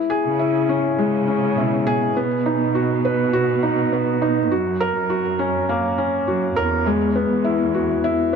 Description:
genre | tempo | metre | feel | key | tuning
piano and strings electronica | 102 BPM | 4/4 | straight | B major | A4 = 439 Hz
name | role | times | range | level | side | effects
felt-muted upright piano | riff | 0.0-8.4 s | G#3 to B4 | -19 LUFS | left 1 dB | ping-pong delay
muted symphonic cello section | bass | 0.2-8.3 s | E2 to C#3 | -24 LUFS | right 3 dB | none
room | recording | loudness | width
moderate echo chamber reverb, RT60 1.9 s | dark, warm production | -18 LUFS | side -6 dB against mid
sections
0.0-8.4 A section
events
none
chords
0.0 C#m; 2.2 B; 4.5 F#; 6.9 Eadd9

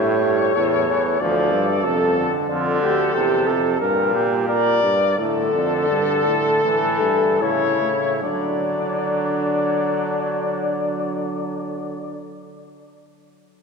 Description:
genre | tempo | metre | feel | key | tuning
classical, imitative canzona for brass ensemble | 72-94 BPM | 4/4 | straight | unclear | A4 = 440 Hz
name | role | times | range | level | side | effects
mellow trumpet | melody | 0.0-12.3 s | A4 to D5 | -22 LUFS | left 6 dB | none
warm flugelhorn | second line | 0.0-12.3 s | D4 to Bb4 | -24 LUFS | right 5 dB | none
brilliant trombone | accompaniment | 0.0-12.3 s | G2 to F#3 | -26 LUFS | right 2 dB | none
clear bass trombone | bass | 0.0-12.3 s | D2 to D3 | -25 LUFS | right 2 dB | none
room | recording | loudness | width
wet church reverb, RT60 3.3 s | none | -18 LUFS | side -5 dB against mid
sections
0.0-8.2 A section; 8.2-11.5 B section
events
slowing down 1.2-8.2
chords
0.0 A; 1.2 Dm; 3.8 Gm; 5.2 Dm; 6.6 A; 8.2 D

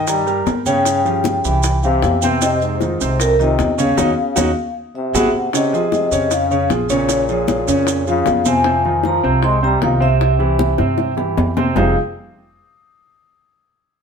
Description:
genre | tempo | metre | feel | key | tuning
Afro-Cuban jazz | 154 BPM | 4/4 | straight | F minor | A4 = 440 Hz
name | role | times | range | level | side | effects
vibraphone with medium mallets | melody | 0.0-11.9 s | Bb4 to C6 | -20 LUFS | left 1 dB | none
breathy trombone | second line | 0.0-11.9 s | F2 to Ab3 | -23 LUFS | left 5 dB | none
warm concert grand piano | accompaniment | 0.0-11.9 s | C3 to Eb5 | -20 LUFS | right 3 dB | none
upright bass | bass | 0.0-11.9 s | F1 to G2 | -21 LUFS | right 1 dB | none
bongos | percussion | 0.1-11.9 s | none | -25 LUFS | left 6 dB | none
congas | percussion | 0.1-11.9 s | none | -24 LUFS | left 2 dB | none
maracas | percussion | 0.1-8.6 s | none | -26 LUFS | right 7 dB | none
room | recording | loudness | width
moderate stone room reverb, RT60 1.0 s | band playing live in one room | -14 LUFS | side -6 dB against mid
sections
0.0-5.5 A section; 5.5-11.8 B section; 11.8-13.3 C section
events
band accent 4.0-5.5; drum fill 5.0-5.5, 10.8-11.8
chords
0.0 Cm7 (rootless); 0.9 Dbmaj7#11; 1.6 C; 2.4 Fm7; 4.0 Ebm7; 4.8 Abaug7; 5.5 Dbmaj7; 7.1 Bbm7; 8.7 Fm7; 10.2 C; 11.8 Fm7

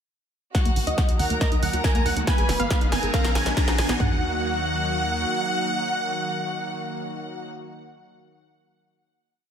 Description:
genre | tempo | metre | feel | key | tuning
uplifting trance | 139 BPM | 4/4 | straight | Eb minor | A4 = 440 Hz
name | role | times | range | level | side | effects
supersaw chords | melody | 0.5-7.5 s | Eb5 to Bb5 | -29 LUFS | equal | sidechain pumping, low-pass filter, ping-pong delay
rich studio violin section | second line | 0.5-7.5 s | Gb4 to Cb6 | -30 LUFS | right 1 dB | ping-pong delay
wide unison pluck | second line | 0.5-7.5 s | Eb5 to Bb5 | -36 LUFS | right 2 dB | none
lush unison pad | sustained chords | 0.5-7.5 s | Eb3 to Ab4 | -31 LUFS | right 1 dB | chorus, sidechain pumping
tight sequenced synth | arpeggios | 0.5-4.2 s | Eb3 to Ab4 | -32 LUFS | right 2 dB | chorus, sidechain pumping, ping-pong delay
big-room dance drum kit | drums | 0.5-4.1 s | kick drum, toms | -22 LUFS | equal | none
punchy analog drum machine | drums | 0.5-4.0 s | hi-hat, snare drum | -29 LUFS | equal | overdrive, high-pass filter on snare, sidechain pumping on hats, high-pass filter on hats, high-pass filter on room
riser | sound effects | 1.6-4.0 s | none | -32 LUFS | right 1 dB | none
tight sequencer bass | bass | 0.7-5.3 s | Gb1 to Eb2 | -30 LUFS | equal | sidechain pumping
room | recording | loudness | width
light reverb, digital ambience | none | -21 LUFS | side -8 dB against mid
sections
0.5-4.0 build; 4.0-7.5 final chord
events
build-up 0.5-4.0; drum fill 0.5-4.0; filter sweep on supersaw synth 0.5-4.0; filter sweep on synth arpeggio sound 0.5-4.0; riser 1.6-4.0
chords
0.5 Ebm; 2.3 Abm; 3.1 B; 4.0 Ebm

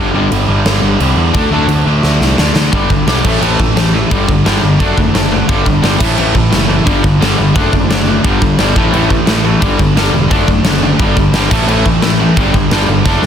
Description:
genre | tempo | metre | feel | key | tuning
punk rock | 174 BPM | 4/4 | straight | unclear | A4 = 442 Hz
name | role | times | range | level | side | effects
distorted electric guitar | riff | 0.0-13.3 s | G2 to D4 | -17 LUFS | right 7 dB | distortion
raw garage guitar | riff | 0.0-13.2 s | G2 to D4 | -16 LUFS | left 9 dB | overdrive
sludgy distorted guitar | riff | 0.0-13.3 s | G2 to D4 | -18 LUFS | equal | overdrive
fuzz picked electric bass | bass | 0.0-13.3 s | E1 to E2 | -15 LUFS | equal | overdrive
big rock drum kit | drums | 0.3-13.3 s | crash cymbal, kick drum, snare drum | -14 LUFS | equal | soft clipping on kick
room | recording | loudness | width
light reverb | dense, heavily limited modern master | -9 LUFS | side -8 dB against mid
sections
0.0-2.7 A section; 2.7-13.3 B section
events
half time 0.0-2.7; drum fill 2.0-2.7, 13.1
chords
0.0 G5; 1.3 D5; 2.7 G; 3.2 A5; 4.1 G5; 4.8 D/F#; 5.5 G5; 6.0 A5; 6.9 G5; 7.6 D/F#; 8.2 G5; 8.8 A5; 9.6 G5; 10.3 D/F#; 11.0 G5; 11.5 A5; 12.4 G5

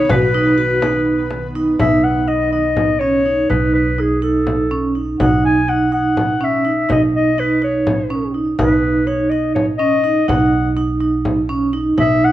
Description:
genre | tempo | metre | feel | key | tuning
contemporary instrumental, chamber music in an uneven meter | 248 BPM (eighths) | 7/8 | straight | B mixolydian | A4 = 440 Hz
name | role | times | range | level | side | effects
warm clarinet | melody | 0.0-12.3 s | G#4 to G#5 | -18 LUFS | left 3 dB | none
shimmering ambient pad | sustained chords | 0.0-1.8 s | D#3 to B4 | -30 LUFS | left 1 dB | chorus, built-in reverb
vibraphone with medium hard mallets | arpeggios | 0.0-12.3 s | C#4 to F#4 | -17 LUFS | right 2 dB | none
upright bass | bass | 0.0-12.3 s | B1 | -23 LUFS | right 1 dB | none
frame drum | percussion | 0.1-12.2 s | none | -23 LUFS | left 2 dB | none
room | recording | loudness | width
light reverb | worn, warbling old tape, cassette tape, warbly pitch drift | -14 LUFS | side -13 dB against mid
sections
0.0-1.8 A section; 1.8-12.3 B section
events
none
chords
0.0 B

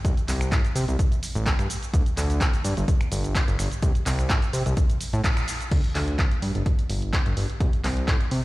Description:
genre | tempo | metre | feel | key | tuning
piano house | 127 BPM | 4/4 | swing 54% on 16ths | A minor | A4 = 439 Hz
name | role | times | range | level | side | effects
fat analog bass | bass | 0.0-8.4 s | G1 to C3 | -25 LUFS | equal | sidechain pumping
electronic kick drum | drums | 0.0-8.2 s | none | -23 LUFS | equal | none
punchy analog drum machine | drums | 0.0-8.4 s | crash cymbal, finger snaps, handclaps, hi-hat, shaker | -30 LUFS | equal | none
room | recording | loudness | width
little or no reverb | played on a big sound system in a bare room, large studio reverb | -21 LUFS | side -19 dB against mid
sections
0.0-5.7 A section; 5.7-8.4 B section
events
drop 0.0-5.7; band accent 5.2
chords
none

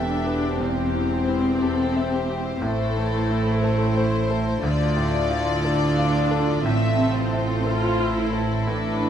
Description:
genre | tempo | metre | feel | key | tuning
cinematic, emotional film score for orchestra | 59 BPM | 4/4 | rubato | A minor | A4 = 440 Hz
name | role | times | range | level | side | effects
warm symphonic violin section | melody | 0.0-9.1 s | G4 to E5 | -29 LUFS | left 6 dB | none
warm symphonic violin section | second line | 0.0-9.1 s | E4 to E5 | -29 LUFS | equal | none
bright concert grand piano | accompaniment | 0.0-9.1 s | D2 to E5 | -27 LUFS | equal | none
dark symphonic viola section | accompaniment | 0.0-9.1 s | A3 to F4 | -26 LUFS | left 1 dB | none
rich symphonic double bass section | bass | 0.0-9.1 s | E1 to D2 | -27 LUFS | right 3 dB | none
warm symphonic cello section | bass | 0.0-9.1 s | E2 to D3 | -28 LUFS | right 1 dB | none
room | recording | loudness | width
moderate scoring stage reverb, RT60 1.6 s | dark, warm production | -20 LUFS | side -9 dB against mid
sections
0.0-9.1 A section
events
none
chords
0.0 Em; 0.6 C/E; 2.6 Am; 4.6 Dm; 6.7 Am

